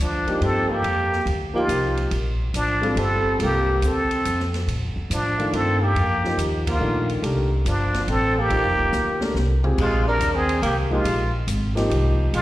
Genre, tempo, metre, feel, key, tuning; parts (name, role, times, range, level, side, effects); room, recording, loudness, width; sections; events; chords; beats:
modal jazz; 141 BPM; 3/4; swing 67% on 8ths; A4 = 440 Hz
trumpet with plunger mute; melody; 0.0-12.4 s; D4 to Bb4; -24 LUFS; equal; slapback echo
breathy alto saxophone; second line; 0.0-12.4 s; F3 to D4; -28 LUFS; right 1 dB; slapback echo
upright bass; bass; 0.0-12.4 s; Eb1 to Bb2; -23 LUFS; equal
warm grand piano; accompaniment; 0.3-12.3 s; Eb3 to Bb4; -26 LUFS; left 1 dB; slapback echo
open jazz drum kit; drums; 0.3-12.4 s; crash cymbal, hi-hat, kick drum, ride cymbal, snare drum, toms; -33 LUFS; right 1 dB
moderate digital room reverb, RT60 1.1 s, small room ambience; live gig heard through the venue's PA, recital hall reverb; -19 LUFS; side -15 dB against mid
0.0-9.8 A section; 9.8-12.4 B section
band accent 6.6; drum fill 8.9-9.8
0.0 F13sus4; 9.8 Bb13sus4
0.41 | 0.84 1.27 1.69 | 2.12 2.54 2.97 | 3.40 3.82 4.25 | 4.67 5.10 5.53 | 5.95 6.38 6.80 | 7.23 7.65 8.08 | 8.51 8.93 9.36 | 9.78 10.21 10.63 | 11.05 11.48 11.90 | 12.33